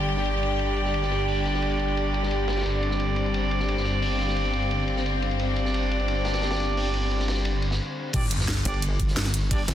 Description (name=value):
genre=dark technical drum and bass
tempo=175 BPM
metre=4/4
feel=straight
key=unclear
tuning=A4 = 440 Hz
part: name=clear symphonic string section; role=sustained chords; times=0.0-8.1 s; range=D3 to G4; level=-29 LUFS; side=left 3 dB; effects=sidechain pumping
part: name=warm brass ensemble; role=stabs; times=0.0-9.6 s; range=D4 to D5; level=-30 LUFS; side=right 1 dB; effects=ping-pong delay
part: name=phased detuned saw bass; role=bass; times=0.0-9.7 s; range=G1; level=-27 LUFS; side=equal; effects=phaser, overdrive, sidechain pumping
part: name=warbly tape-like pad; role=texture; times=0.0-7.8 s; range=G4 to G5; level=-35 LUFS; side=right 1 dB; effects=chorus, built-in reverb, sidechain pumping
part: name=crunchy breakbeat drum kit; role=drums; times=0.1-9.7 s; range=hi-hat, ride cymbal, snare drum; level=-34 LUFS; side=equal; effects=high-pass filter on cymbals, low-pass filter on cymbals, high-pass filter on hats, low-pass filter on hats, high-pass filter on snare, low-pass filter on snare, high-pass filter on room, low-pass filter on room
part: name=drum and bass drum kit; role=drums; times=8.1-9.7 s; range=crash cymbal, hi-hat, snare drum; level=-30 LUFS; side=equal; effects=overdrive
part: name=electronic kick drum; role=drums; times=8.1-9.6 s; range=none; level=-26 LUFS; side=equal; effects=overdrive
part: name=sub drop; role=sound effects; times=8.1-9.5 s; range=none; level=-34 LUFS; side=equal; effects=none
part: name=pulsing pluck wobble bass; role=bass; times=8.7-9.7 s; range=G1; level=-26 LUFS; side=equal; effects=chorus
room=light reverb, small room reverb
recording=dense, heavily limited modern master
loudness=-23 LUFS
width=side -11 dB against mid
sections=0.0-8.1 A section; 8.1-9.7 B section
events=break 7.8-8.1; drop 8.1-9.7; impact 8.1-9.5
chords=0.0 G5